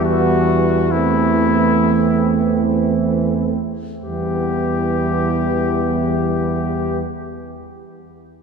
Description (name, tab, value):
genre	classical, hymn-like piece for brass band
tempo	49-70 BPM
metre	3/4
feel	rubato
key	E minor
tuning	A4 = 439 Hz
part	warm cornet	melody	0.0-7.0 s	E4 to G4	-23 LUFS	left 5 dB	none
part	dark French horn section	second line	0.0-7.0 s	B3 to C4	-25 LUFS	right 3 dB	none
part	bright trombone	accompaniment	0.0-7.0 s	E3	-25 LUFS	right 1 dB	none
part	mellow euphonium	accompaniment	0.0-7.0 s	G3 to A3	-20 LUFS	right 3 dB	none
part	mellow tuba	bass	0.0-7.0 s	E2	-22 LUFS	right 2 dB	none
room	wet church reverb, RT60 3.8 s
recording	recorded in a church or concert hall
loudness	-15 LUFS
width	side -6 dB against mid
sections	0.0-4.1 A section; 4.1-7.3 B section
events	slowing down 0.0-4.1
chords	0.0 Em; 0.9 Am/E; 4.1 Em